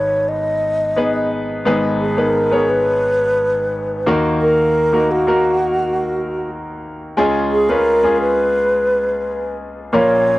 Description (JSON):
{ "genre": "pop", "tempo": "87 BPM", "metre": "4/4", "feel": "straight", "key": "unclear", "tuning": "A4 = 440 Hz", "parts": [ { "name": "breathy wooden-headed alto flute", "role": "melody", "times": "0.0-10.4 s", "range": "Gb4 to Eb5", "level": "-16 LUFS", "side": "equal", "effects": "cassette tape, analog delay" }, { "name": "clear concert grand piano", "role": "accompaniment", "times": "0.0-10.4 s", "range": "Ab1 to Db5", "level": "-18 LUFS", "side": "left 1 dB", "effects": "cassette tape" } ], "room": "moderate booth ambience, RT60 0.2 s", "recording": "home recording on cassette", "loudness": "-14 LUFS", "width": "side -18 dB against mid", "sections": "0.0-1.7 A section; 1.7-10.4 B section", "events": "none", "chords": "0.0 Abm; 4.1 Ebm; 7.2 Db" }